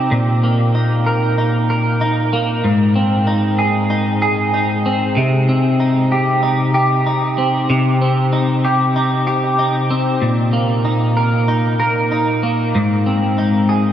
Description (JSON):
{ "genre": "dream pop", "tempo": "95 BPM", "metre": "4/4", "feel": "straight", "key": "C minor", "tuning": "A4 = 439 Hz", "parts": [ { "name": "clean electric guitar", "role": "solo", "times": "0.0-13.9 s", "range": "Ab2 to Bb4", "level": "-14 LUFS", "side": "equal", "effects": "analog chorus, analog delay" } ], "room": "wet huge ambient reverb, RT60 8.6 s", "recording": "dreamy mix soaked in reverb", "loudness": "-14 LUFS", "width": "side -10 dB against mid", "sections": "0.0-13.9 A section", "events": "none", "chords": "0.1 Bbsus4; 2.6 Ab; 5.2 Cm; 10.2 Bbsus4; 12.7 Ab" }